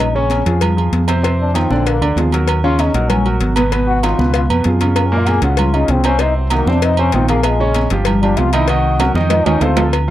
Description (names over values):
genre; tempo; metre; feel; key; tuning
Afro-Cuban jazz; 193 BPM; 4/4; straight; Bb minor; A4 = 440 Hz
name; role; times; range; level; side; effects
trombone with cup mute; second line; 0.0-9.9 s; Gb3 to Ab4; -19 LUFS; left 4 dB; none
fingered electric bass; bass; 0.0-10.1 s; G1 to Gb2; -16 LUFS; equal; none
agogo bells and timbales; percussion; 0.0-10.1 s; none; -23 LUFS; right 7 dB; none
congas; percussion; 0.0-10.1 s; none; -22 LUFS; equal; none
cowbell; percussion; 0.0-10.1 s; none; -24 LUFS; left 10 dB; none
clear grand piano; accompaniment; 0.1-10.1 s; Bb2 to Eb5; -19 LUFS; right 1 dB; none
room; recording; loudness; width
little or no reverb; dry, close 1970s-style studio recording; -12 LUFS; side -13 dB against mid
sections
0.0-9.9 A section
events
trombone solo 0.0-9.9; drum fill 9.0-9.9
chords
0.0 Bbm7; 1.2 F7sus4; 1.9 Bb7; 2.5 Ebm7; 3.7 Abm7; 4.3 Db7; 5.0 Gbmaj7#11; 6.2 Cdim; 6.8 F5; 7.5 Bbm7; 8.1 Ebmaj13/G; 8.7 Cm7b5; 9.3 F7